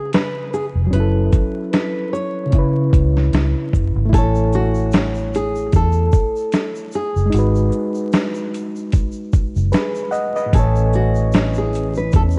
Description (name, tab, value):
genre	lo-fi hip hop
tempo	75 BPM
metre	4/4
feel	swing 56% on 16ths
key	unclear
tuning	A4 = 439 Hz
part	nylon-string guitar	melody	0.0-12.2 s	F#4 to C#5	-26 LUFS	equal	dub echo
part	reed electric piano	accompaniment	0.0-12.4 s	A2 to G#5	-25 LUFS	equal	dub echo
part	dusty soul sampler-style drum kit	drums	0.1-12.3 s	hi-hat, kick drum, shaker, snare drum	-20 LUFS	equal	overdrive, vintage 12-bit sampler grit
part	vintage muted fingered electric bass	bass	0.8-12.4 s	E#1 to C#3	-20 LUFS	equal	none
part	egg shaker	percussion	4.1-12.4 s	none	-49 LUFS	equal	none
part	warm analog pad	sustained chords	10.5-12.4 s	E3 to C#4	-30 LUFS	equal	chorus, phaser
room	light reverb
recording	echo-heavy mix, vinyl crackle, nothing above 10.7 kHz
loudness	-18 LUFS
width	mono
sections	0.0-4.1 A section; 4.1-12.4 B section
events	none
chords	0.0 C#7; 0.9 F#m7; 2.5 C#m7; 4.1 Amaj7; 7.3 G#m7; 10.5 Amaj7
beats	0.13 | 0.93 1.73 2.53 3.33 | 4.13 4.93 5.73 6.53 | 7.33 8.13 8.93 9.73 | 10.53 11.33 12.13